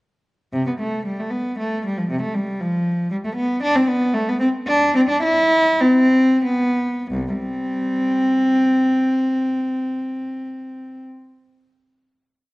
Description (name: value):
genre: classical, baroque-style suite movement for unaccompanied cello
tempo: 86-118 BPM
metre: 3/4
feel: rubato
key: C major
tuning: A4 = 439 Hz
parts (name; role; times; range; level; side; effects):
- rich cello; solo; 0.5-11.0 s; C2 to E4; -17 LUFS; equal; none
room: moderate recital hall reverb, RT60 1.5 s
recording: worn, warbling old tape, cassette tape, warbly pitch drift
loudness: -17 LUFS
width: side -22 dB against mid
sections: 0.5-7.1 A section; 7.1-11.1 final chord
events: slowing down 2.9-7.1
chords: none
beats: | 0.53 1.07 1.59 | 2.10 2.61 3.12 | 3.63 4.15 4.68 | 5.23 5.81 6.43 | 7.11 7.78 8.44 | 9.10 9.76 10.43